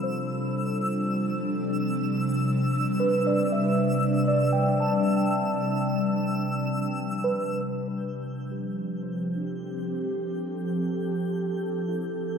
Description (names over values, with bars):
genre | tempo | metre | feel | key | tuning
ambient | 71 BPM | 3/4 | straight | F lydian | A4 = 441 Hz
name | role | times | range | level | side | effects
ethereal airy pad | sustained chords | 0.0-12.4 s | C3 to A4 | -26 LUFS | equal | ensemble chorus, built-in reverb
muted felt-like synth keys | arpeggios | 0.0-12.4 s | D4 to A5 | -30 LUFS | right 1 dB | chorus, ping-pong delay
analog drone | drone | 0.0-7.7 s | F3 to C4 | -39 LUFS | left 1 dB | none
twinkling granular texture | texture | 0.0-12.4 s | E6 to G6 | -35 LUFS | left 1 dB | built-in reverb
room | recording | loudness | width
wet cathedral reverb, RT60 5.4 s | in a vast, echoing space | -24 LUFS | side -6 dB against mid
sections
0.0-7.7 A section; 7.7-12.4 B section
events
fade-in on synth keys 7.7-12.4; fade-in on synth texture 7.7-12.4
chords
0.0 Cmaj7; 7.7 F